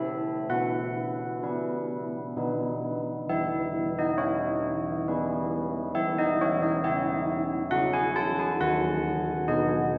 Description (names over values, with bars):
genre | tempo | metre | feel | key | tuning
classical, tune for church bells | 67 BPM | 3/4 | uneven beats | E major | A4 = 437 Hz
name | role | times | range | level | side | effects
old church bells | solo | 0.0-10.0 s | D#3 to A5 | -28 LUFS | equal | none
room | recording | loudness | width
wet cathedral reverb, RT60 4.3 s | dark, warm production | -28 LUFS | mono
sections
0.0-3.3 A section; 3.3-10.0 B section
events
none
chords
0.0 A5; 0.5 Bsus4; 2.4 B; 3.3 E; 6.0 F#5/E; 8.6 B/D#